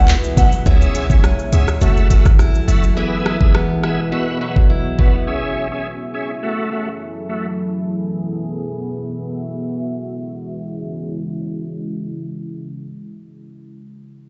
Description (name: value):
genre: dancehall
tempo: 104 BPM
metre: 4/4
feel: straight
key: C# minor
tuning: A4 = 440 Hz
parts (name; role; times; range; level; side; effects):
- hollow clarinet-like synth lead; melody; 0.0-0.5 s; F#5; -27 LUFS; equal; chorus, digital delay
- deep dark ambient pad; sustained chords; 0.1-13.0 s; C#3 to E5; -27 LUFS; equal; chorus, built-in reverb, sidechain pumping, low-pass filter
- picked acoustic archtop guitar; arpeggios; 0.0-5.8 s; F#2 to E4; -28 LUFS; equal; low-pass filter
- hard-hitting 808-style bass; bass; 0.0-2.9 s; F#1 to C#2; -17 LUFS; equal; none
- island pop drum kit; drums; 0.1-5.1 s; handclaps, hi-hat, kick drum, rim click, shaker; -16 LUFS; equal; none
- egg shaker; percussion; 0.1-0.7 s; none; -38 LUFS; equal; none
- bright tonewheel organ; accompaniment; 0.4-7.5 s; A3 to E5; -27 LUFS; equal; overdrive, chorus vibrato, slow rotary speaker, low-pass filter
room: digital ambience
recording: played on a big sound system in a bare room, large studio reverb, nothing above 7.9 kHz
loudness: -18 LUFS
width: mono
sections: 0.7-9.9 A section; 9.9-12.2 B section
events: filter sweep 0.7-9.9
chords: 0.0 Bsus4; 0.7 C#m; 1.8 F#m7; 3.0 E; 4.1 Bsus4; 5.3 C#m; 6.4 F#m7; 7.6 E; 8.7 Bsus4; 9.9 C#m